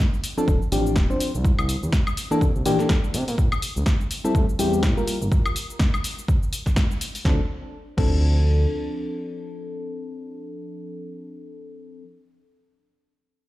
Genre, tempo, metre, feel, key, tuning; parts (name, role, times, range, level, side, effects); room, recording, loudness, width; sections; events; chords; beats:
deep house; 124 BPM; 4/4; swing 57% on 16ths; D minor; A4 = 440 Hz
deep house drum kit; drums; 0.0-8.1 s; cabasa, crash cymbal, hi-hat, snare drum, woodblock; -29 LUFS; left 1 dB; overdrive
mellow FM electric piano; stabs; 0.4-12.0 s; E3 to C5; -26 LUFS; left 1 dB; chorus, sidechain pumping, tape echo
smooth gliding synth bass; bass; 0.5-8.7 s; D1 to C3; -22 LUFS; equal; sidechain pumping
electronic kick drum; drums; 0.5-8.1 s; -22 LUFS; equal; overdrive
light reverb, digital ambience; played on a big sound system in a bare room, large studio reverb; -20 LUFS; side -16 dB against mid
0.0-7.3 A section; 7.3-11.1 B section
drop 0.0-7.3
0.0 Dm7; 1.4 C13; 3.4 Am7; 5.1 Gm7; 7.3 Dm7
0.48 0.96 | 1.45 1.93 2.41 2.90 | 3.38 3.87 4.35 4.83 | 5.32 5.80 6.29 6.77 | 7.25 7.74 8.22 8.70 | 9.19 9.67 10.16 10.64